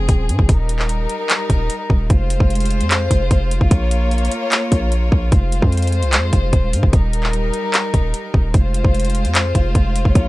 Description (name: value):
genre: hip hop, trap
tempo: 149 BPM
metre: 4/4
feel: half-time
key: F minor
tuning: A4 = 440 Hz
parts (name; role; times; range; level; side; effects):
- warm chamber string section; sustained chords; 0.0-10.3 s; F3 to Db5; -23 LUFS; left 1 dB; none
- hard-hitting 808-style bass; bass; 0.0-10.3 s; Eb1 to Ab2; -18 LUFS; equal; none
- trap drum kit; drums; 0.1-10.2 s; handclaps, hi-hat, kick drum; -16 LUFS; equal; vintage 12-bit sampler grit
room: little or no reverb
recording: none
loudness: -14 LUFS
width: side -19 dB against mid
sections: 0.0-10.3 A section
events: none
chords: 0.5 Eb; 2.1 Fm; 3.7 Bbm; 5.3 Fm; 6.9 Eb; 8.5 Fm